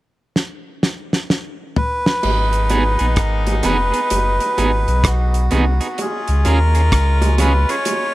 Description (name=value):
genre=dub reggae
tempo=64 BPM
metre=4/4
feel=swing 63% on 16ths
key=G# dorian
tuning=A4 = 440 Hz
part: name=damped 70s drum kit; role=drums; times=0.4-8.1 s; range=crash cymbal, hi-hat, kick drum, rim click, snare drum, toms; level=-21 LUFS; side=equal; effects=none
part: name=melodica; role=melody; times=1.8-8.1 s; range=F#4 to C#5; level=-20 LUFS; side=equal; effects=dub echo
part: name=clear horn section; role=second line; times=2.2-8.1 s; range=G#3 to E#4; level=-27 LUFS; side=left 2 dB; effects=dub echo
part: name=warm sub bass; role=bass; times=2.2-7.7 s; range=E#1 to D#2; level=-16 LUFS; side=equal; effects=none
part: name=bongos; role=percussion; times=2.2-8.1 s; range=none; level=-26 LUFS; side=right 2 dB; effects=dub echo
part: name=semi-hollow electric guitar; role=accompaniment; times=2.7-7.7 s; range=B3 to G#4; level=-24 LUFS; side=right 4 dB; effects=tremolo, dub echo
room=small room ambience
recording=none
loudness=-15 LUFS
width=side -17 dB against mid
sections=0.0-2.2 A section; 2.2-8.1 B section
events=drum fill 0.4-2.2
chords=0.0 N.C.; 2.2 G#m; 6.0 C#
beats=0.35 1.29 | 2.23 3.17 4.10 5.04 | 5.98 6.92 7.85